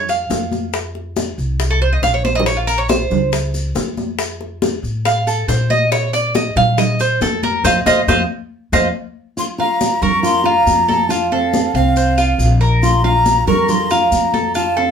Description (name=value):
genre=latin, Cuban son and guajira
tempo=139 BPM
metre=4/4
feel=straight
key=Bb harmonic minor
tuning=A4 = 440 Hz
part: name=Cuban tres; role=arpeggios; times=0.0-14.9 s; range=F4 to F5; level=-17 LUFS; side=right 2 dB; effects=none
part: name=upright bass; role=bass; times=0.0-14.9 s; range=Bb1 to Bb2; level=-20 LUFS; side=equal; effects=none
part: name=bongos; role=percussion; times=0.1-8.8 s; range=none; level=-24 LUFS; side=left 4 dB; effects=none
part: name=congas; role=percussion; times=0.1-14.9 s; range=none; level=-22 LUFS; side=equal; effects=none
part: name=maracas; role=percussion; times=0.1-14.8 s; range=none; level=-30 LUFS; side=left 3 dB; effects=none
part: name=breathy jazz flute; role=melody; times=9.4-14.9 s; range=F5 to Db6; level=-17 LUFS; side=left 1 dB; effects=none
part: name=nylon-string guitar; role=second line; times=9.4-14.9 s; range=C4 to Bb4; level=-20 LUFS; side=equal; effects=none
room=wet small room reverb, RT60 0.5 s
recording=band playing live in one room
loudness=-14 LUFS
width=side -7 dB against mid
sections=0.0-9.4 A section; 9.4-14.9 B section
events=Cuban tres solo 0.0-9.4; drum fill 2.2, 8.7-9.4; band accent 7.6-9.4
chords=0.0 N.C.; 0.7 F5; 2.5 Bbm; 4.2 F; 5.9 Bb5; 7.6 F5; 9.4 Bb5; 11.1 F; 12.8 Bb5